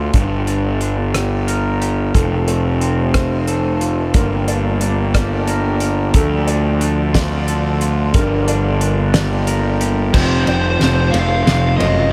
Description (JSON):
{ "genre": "post-rock", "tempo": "60 BPM (dotted quarters)", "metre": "6/8", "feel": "straight", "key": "G minor", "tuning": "A4 = 439 Hz", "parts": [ { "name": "electric guitar through a small old amp", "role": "arpeggios", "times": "0.0-12.1 s", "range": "D3 to Bb4", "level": "-28 LUFS", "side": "equal", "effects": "subtle chorus, diffuse ambient delay" }, { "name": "fuzz picked electric bass", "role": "bass", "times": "0.0-12.1 s", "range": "F1 to D2", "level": "-20 LUFS", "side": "equal", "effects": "overdrive" }, { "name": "loose indie drum kit", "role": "drums", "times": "0.1-12.0 s", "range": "crash cymbal, hi-hat, kick drum, ride cymbal, rim click, snare drum", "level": "-22 LUFS", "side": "equal", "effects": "none" }, { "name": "chorused pulse-width pad", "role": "sustained chords", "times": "2.1-12.1 s", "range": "C3 to C4", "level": "-26 LUFS", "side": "equal", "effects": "none" }, { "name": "felt-muted upright piano", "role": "arpeggios", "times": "2.1-12.1 s", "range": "A4 to D5", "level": "-30 LUFS", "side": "equal", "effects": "none" }, { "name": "overdriven semi-hollow guitar", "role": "melody", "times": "10.1-12.1 s", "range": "C5 to F5", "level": "-22 LUFS", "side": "equal", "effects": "diffuse ambient delay" }, { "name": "distorted electric guitar", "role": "riff", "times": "10.1-12.1 s", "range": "F2 to F3", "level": "-22 LUFS", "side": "equal", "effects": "distortion" } ], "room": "moderate huge ambient reverb, RT60 7.4 s", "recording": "dreamy mix soaked in reverb", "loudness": "-17 LUFS", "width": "mono", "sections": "0.0-10.1 A section; 10.1-12.1 B section", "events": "build-up 10.1-12.1; drum fill 10.1-12.1", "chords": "0.1 Gm; 2.1 F; 4.1 Gm; 6.1 Dm; 8.1 Gm; 10.1 F" }